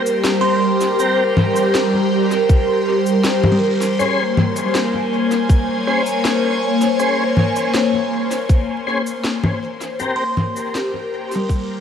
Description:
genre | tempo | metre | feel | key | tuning
ambient dub | 80 BPM | 4/4 | straight | Bb dorian | A4 = 437 Hz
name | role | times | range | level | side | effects
airy breathy pad | sustained chords | 0.0-11.8 s | G3 to Ab5 | -18 LUFS | left 1 dB | chorus, phaser
tonewheel organ | stabs | 0.0-10.2 s | C4 to C5 | -24 LUFS | left 2 dB | chorus vibrato, slow rotary speaker, dub echo
electronic cabasa, snare drum and congas | drums | 0.1-11.7 s | none | -22 LUFS | left 1 dB | dub echo
buzzing kalimba | arpeggios | 0.4-11.8 s | G3 to C6 | -25 LUFS | right 2 dB | vintage 12-bit sampler grit, diffuse ambient delay
electronic kick drum | drums | 2.5-11.6 s | none | -13 LUFS | equal | none
room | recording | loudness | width
wet lush hall reverb, RT60 2.2 s | dreamy mix soaked in reverb, vinyl crackle | -15 LUFS | side -8 dB against mid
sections
0.0-11.8 A section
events
fade-out 8.0-11.8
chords
0.0 Gmadd11; 4.0 Bbm9; 10.0 Gmadd11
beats
0.25 | 1.00 1.75 2.50 3.25 | 4.00 4.75 5.50 6.25 | 7.00 7.75 8.50 9.25 | 10.00 10.75 11.50

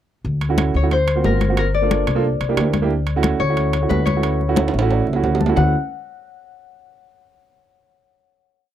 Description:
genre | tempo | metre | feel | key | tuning
Afro-Cuban jazz | 180 BPM | 4/4 | straight | D major | A4 = 439 Hz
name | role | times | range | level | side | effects
upright bass | bass | 0.2-5.7 s | G1 to D2 | -20 LUFS | left 1 dB | none
congas | percussion | 0.2-5.6 s | none | -23 LUFS | left 4 dB | none
timbales | percussion | 0.4-5.6 s | none | -25 LUFS | right 5 dB | none
warm concert grand piano | accompaniment | 0.5-5.7 s | A3 to A5 | -21 LUFS | right 7 dB | none
Celtic harp | melody | 0.8-5.9 s | A#4 to F#5 | -24 LUFS | left 6 dB | none
room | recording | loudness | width
light reverb | dry, close 1970s-style studio recording | -16 LUFS | side -11 dB against mid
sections
0.2-5.6 A section; 5.6-6.9 final chord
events
drum fill 4.6-5.6; grand piano fill 4.6-5.6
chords
0.2 Dmaj9; 0.9 D7alt; 1.6 Gm7; 2.2 C9; 2.9 Dmaj9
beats
| 0.25 0.58 0.91 1.25 | 1.58 1.91 2.24 2.58 | 2.91 3.24 3.57 3.90 | 4.24 4.57 4.90 5.24 | 5.57 5.90

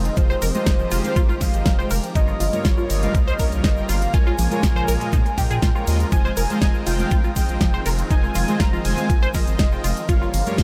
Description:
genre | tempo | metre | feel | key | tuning
progressive house | 121 BPM | 4/4 | straight | F minor | A4 = 440 Hz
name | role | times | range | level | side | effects
warm velvety synth lead | melody | 0.0-10.6 s | C5 to Bb5 | -31 LUFS | equal | chorus, sidechain pumping, tape echo
filtered supersaw swell | sustained chords | 0.0-10.6 s | Db3 to G4 | -33 LUFS | equal | sidechain pumping
round analog bass | bass | 0.0-10.6 s | F1 to Bb2 | -26 LUFS | equal | sidechain pumping
drifting glass-harmonics texture | texture | 0.0-10.6 s | Bb4 to Bb5 | -43 LUFS | equal | none
pop drum kit | drums | 0.1-10.6 s | hi-hat, ride cymbal, snare drum | -31 LUFS | equal | sidechain pumping on hats, sidechain pumping on cymbals
egg shaker | percussion | 0.1-10.6 s | none | -41 LUFS | equal | none
tight sequenced synth | arpeggios | 0.2-10.6 s | F3 to C5 | -32 LUFS | equal | chorus, phaser, sidechain pumping, tape echo
soft supersaw | stabs | 0.2-10.6 s | G2 to G5 | -31 LUFS | equal | sidechain pumping, tape echo
electronic kick drum | drums | 0.2-10.6 s | none | -21 LUFS | equal | none
woodblock and congas | percussion | 0.3-10.6 s | none | -35 LUFS | equal | none
room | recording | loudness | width
little or no reverb | none | -20 LUFS | mono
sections
0.0-10.6 A section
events
none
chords
0.0 Fm7; 2.2 Gm7b5; 4.1 Bbm7; 6.1 Fm7; 10.1 Gm7b5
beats
| 0.17 0.67 1.16 1.66 | 2.15 2.65 3.15 3.64 | 4.14 4.63 5.13 5.63 | 6.12 6.62 7.11 7.61 | 8.11 8.60 9.10 9.59 | 10.09 10.58

